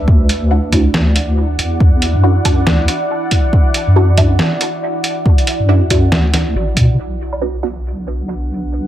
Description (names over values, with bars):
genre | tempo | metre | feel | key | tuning
deep dubstep | 139 BPM | 4/4 | swing 59% on 16ths, half-time | unclear | A4 = 440 Hz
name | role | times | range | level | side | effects
deep dark ambient pad | sustained chords | 0.0-8.9 s | D4 to F#5 | -22 LUFS | equal | chorus, built-in reverb
filtered dub chord stab | stabs | 0.0-8.9 s | B3 to F#4 | -22 LUFS | right 2 dB | phaser, analog chorus, dub echo
deep soft wobble bass | bass | 0.0-8.9 s | A1 to B2 | -14 LUFS | equal | chorus
electronic kick drum | drums | 0.1-6.9 s | none | -12 LUFS | equal | small room reverb
trip hop sampler-style drum kit | drums | 0.3-7.4 s | hi-hat, snare drum, woodblock | -17 LUFS | right 1 dB | overdrive, low-pass filter on hats, small room reverb, low-pass filter on snare, low-pass filter on perc
room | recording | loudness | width
digital ambience | none | -12 LUFS | side -12 dB against mid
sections
0.0-7.0 A section; 7.0-8.9 B section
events
filter sweep on synth stab 0.0-7.0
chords
0.1 Dadd9; 7.0 Bm